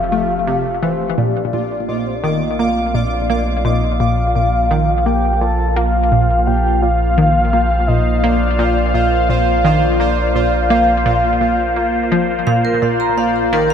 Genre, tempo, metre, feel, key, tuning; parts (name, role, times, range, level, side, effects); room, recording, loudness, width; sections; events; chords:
ambient, sequencer-driven space music; 85 BPM; 4/4; straight; Bb major; A4 = 440 Hz
soft octave-layered synth lead; melody; 0.0-12.5 s; C5 to A5; -19 LUFS; left 2 dB; chorus, tremolo, ping-pong delay
phased analog pad; sustained chords; 0.0-13.7 s; F3 to G5; -20 LUFS; equal; phaser, chorus
round analog bass; bass; 0.0-13.7 s; F1 to Bb1; -20 LUFS; equal
pulsing gated texture; texture; 0.0-13.7 s; A3 to D6; -26 LUFS; right 1 dB; chorus, built-in reverb
analog pluck; riff; 0.1-13.7 s; Bb2 to Bb3; -19 LUFS; equal; chorus, ping-pong delay
vibraphone with medium hard mallets; arpeggios; 12.5-13.7 s; Bb4 to Bb5; -18 LUFS; right 3 dB; auto-pan, ping-pong delay
wet spring reverb, RT60 2.6 s; echo-heavy mix; -13 LUFS; side -8 dB against mid
0.0-1.2 A section; 1.2-13.7 B section
0.0 F; 1.2 Bb